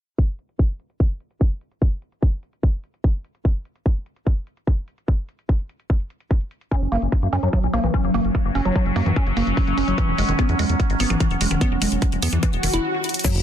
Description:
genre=psychedelic trance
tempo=147 BPM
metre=4/4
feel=straight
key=unclear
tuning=A4 = 440 Hz
part: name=electronic kick drum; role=drums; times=0.2-13.3 s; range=none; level=-19 LUFS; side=equal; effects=none
part: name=garage drum kit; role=drums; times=0.2-13.4 s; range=crash cymbal, hi-hat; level=-29 LUFS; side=equal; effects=none
part: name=evolving wavetable pad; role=sustained chords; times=7.2-13.4 s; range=F#3 to C#4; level=-26 LUFS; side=equal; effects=phaser, built-in reverb, sidechain pumping
part: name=woody wave-folded pluck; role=riff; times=6.7-13.3 s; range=D#3 to E4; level=-24 LUFS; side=equal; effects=chorus, auto-pan, sidechain pumping, ping-pong delay
part: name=round analog bass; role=bass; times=6.8-13.4 s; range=E1 to F#2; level=-23 LUFS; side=equal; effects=tube saturation
part: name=swell and sub drop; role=sound effects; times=12.5-13.4 s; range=none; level=-25 LUFS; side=equal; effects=none
part: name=egg shaker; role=percussion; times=13.2-13.3 s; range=none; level=-30 LUFS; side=equal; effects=none
part: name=warbly tape-like pad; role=texture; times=13.3-13.4 s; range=F#4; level=-34 LUFS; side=right 7 dB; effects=chorus, built-in reverb, sidechain pumping
room=little or no reverb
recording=dense, heavily limited modern master, low-pass filter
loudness=-20 LUFS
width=side -10 dB against mid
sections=0.2-13.2 A section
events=filter sweep 0.2-13.2; swell 12.5-13.2; stop 12.8-13.2; drum fill 13.0; impact 13.2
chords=0.2 N.C.; 6.7 F#5; 10.0 E5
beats=| 0.18 0.59 1.00 1.41 | 1.82 2.23 2.63 3.04 | 3.45 3.86 4.27 4.67 | 5.08 5.49 5.90 6.31 | 6.71 7.12 7.53 7.94 | 8.35 8.76 9.16 9.57 | 9.98 10.39 10.80 11.20 | 11.61 12.02 12.43 12.84 | 13.24

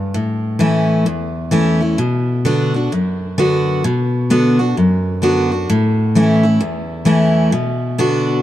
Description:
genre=country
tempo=130 BPM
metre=4/4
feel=swing 63% on 8ths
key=B minor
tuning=A4 = 439 Hz
part: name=picked steel-string acoustic guitar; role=solo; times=0.0-8.4 s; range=E2 to F#4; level=-14 LUFS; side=equal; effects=none
room=light reverb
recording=dark, warm production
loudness=-14 LUFS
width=side -13 dB against mid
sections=0.0-8.4 A section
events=none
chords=0.1 A; 2.0 Bm; 5.7 A; 7.5 Bm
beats=| 0.15 0.61 1.07 1.53 | 1.99 2.45 2.91 3.37 | 3.84 4.30 4.76 5.22 | 5.68 6.14 6.60 7.07 | 7.53 7.99

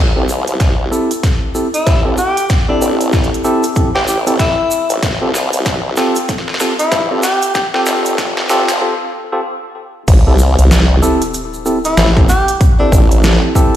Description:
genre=glitch hop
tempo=95 BPM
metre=4/4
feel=swing 60% on 16ths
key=A minor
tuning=A4 = 440 Hz
part: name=formant-sweep wobble bass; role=bass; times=0.0-13.4 s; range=G1 to G2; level=-15 LUFS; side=equal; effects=chorus, high-pass filter
part: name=bright tine electric piano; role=stabs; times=0.2-13.7 s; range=C4 to A4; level=-18 LUFS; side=equal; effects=sidechain pumping, low-pass filter, ping-pong delay
part: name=egg shaker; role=percussion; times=0.3-13.7 s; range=none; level=-27 LUFS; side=right 2 dB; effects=none
part: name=dubstep drum kit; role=drums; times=0.5-13.4 s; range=crash cymbal, hi-hat, snare drum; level=-20 LUFS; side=equal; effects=high-pass filter on hats, small room ambience, high-pass filter on snare, high-pass filter on cymbals
part: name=electronic kick drum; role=drums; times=0.6-13.7 s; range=none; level=-13 LUFS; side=equal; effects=small room ambience
part: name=warm tenor saxophone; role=melody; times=1.7-7.8, 11.9-13.1 s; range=D4 to G4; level=-17 LUFS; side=left 1 dB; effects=vintage 12-bit sampler grit, low-pass filter, ping-pong delay
part: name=sub drop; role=sound effects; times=10.2-12.6 s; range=none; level=-23 LUFS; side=equal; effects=none
room=light reverb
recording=played on a big sound system in a bare room, stone room reverb, high-pass filter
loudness=-11 LUFS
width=side -12 dB against mid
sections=0.0-10.1 A section; 10.1-13.8 B section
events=build-up 0.0-10.1; drum fill 0.0-8.8; filter sweep on tine electric piano 0.0-10.1; filter sweep on tenor saxophone 0.0-10.1; filter sweep 0.0-10.1; break 8.8-10.1; drop 10.1-13.8; impact 10.1-12.6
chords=0.0 Am7; 5.0 G9sus4; 10.1 Am7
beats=0.60 1.24 1.87 | 2.50 3.13 3.76 4.39 | 5.03 5.66 6.29 6.92 | 7.55 8.18 8.82 9.45 | 10.08 10.71 11.34 11.97 | 12.61 13.24

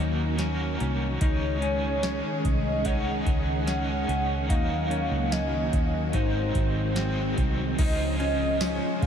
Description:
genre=dream pop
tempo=73 BPM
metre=4/4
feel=straight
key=Db major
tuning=A4 = 442 Hz
part: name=cranked stack guitar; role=accompaniment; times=0.0-9.1 s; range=Eb3 to Db5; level=-36 LUFS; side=right 1 dB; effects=overdrive, tremolo, lush chorus, shimmer reverb
part: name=string machine, violas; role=sustained chords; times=0.0-9.1 s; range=Eb3 to C5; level=-30 LUFS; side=equal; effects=ensemble chorus, shimmer reverb
part: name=clean electric guitar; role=arpeggios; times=0.0-9.1 s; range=C4 to Eb4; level=-33 LUFS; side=left 2 dB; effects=lush chorus, ping-pong delay, shimmer reverb
part: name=vintage muted fingered electric bass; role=bass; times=0.0-9.1 s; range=Ab1 to Eb2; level=-29 LUFS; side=equal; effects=none
part: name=booming analog drum machine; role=drums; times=0.4-9.1 s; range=crash cymbal, hi-hat, kick drum, ride cymbal, snare drum, tambourine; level=-28 LUFS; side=equal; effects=none
part: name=warm velvety synth lead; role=melody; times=1.2-9.1 s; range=C5 to Gb5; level=-32 LUFS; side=right 1 dB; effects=chorus, ping-pong delay, shimmer reverb
room=moderate huge ambient reverb, RT60 8.9 s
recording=dreamy mix soaked in reverb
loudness=-24 LUFS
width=side -8 dB against mid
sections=0.0-7.8 A section; 7.8-9.1 B section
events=none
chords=0.0 Ebm; 1.2 Dbsus2; 4.5 Ebm; 6.1 Ab7; 7.8 Dbmaj7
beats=0.39 | 1.21 2.03 2.86 3.68 | 4.50 5.32 6.14 6.97 | 7.79 8.61

